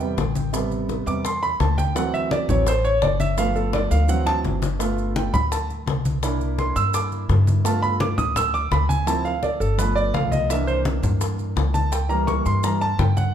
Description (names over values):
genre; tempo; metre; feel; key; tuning
Afro-Cuban jazz; 169 BPM; 4/4; straight; G mixolydian; A4 = 440 Hz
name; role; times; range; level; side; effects
warm concert grand piano; accompaniment; 0.0-13.3 s; C3 to E6; -23 LUFS; right 2 dB; none
upright bass; bass; 0.0-13.3 s; G1 to G2; -23 LUFS; equal; none
congas; percussion; 0.0-13.3 s; none; -28 LUFS; left 3 dB; none
maracas; percussion; 0.0-13.3 s; none; -38 LUFS; right 7 dB; none
bongos; percussion; 0.2-13.2 s; none; -31 LUFS; left 6 dB; none
room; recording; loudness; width
moderate large studio reverb, RT60 1.2 s; band playing live in one room; -19 LUFS; side -9 dB against mid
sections
0.0-4.8 A section; 4.8-13.3 A section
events
grand piano solo 0.0-13.3; drum fill 3.7-4.8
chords
0.0 Am7; 2.0 D9; 3.4 G9; 4.1 D9; 4.8 G9; 6.2 C9; 7.7 G9; 9.1 Dm7; 9.8 G9; 10.5 C9; 11.9 C#dim7